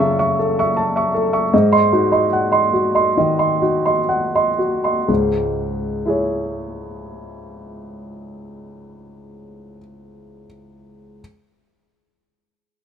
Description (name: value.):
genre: neoclassical minimalist piano.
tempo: 60-80 BPM.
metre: 4/4.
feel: rubato.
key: C# minor.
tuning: A4 = 443 Hz.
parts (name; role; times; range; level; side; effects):
warm concert grand piano; solo; 0.0-11.2 s; C#2 to C#6; -16 LUFS; equal; none.
room: light reverb.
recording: minimal, uncompressed stereo recording.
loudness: -15 LUFS.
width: side -8 dB against mid.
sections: 0.0-5.1 A section; 5.1-9.0 B section.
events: slowing down 0.0-5.1.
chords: 0.0 F#m7; 1.5 G#7; 5.1 C#m.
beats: 0.00 0.75 | 1.52 2.33 3.18 4.10 | 5.08 6.06 7.04 8.02.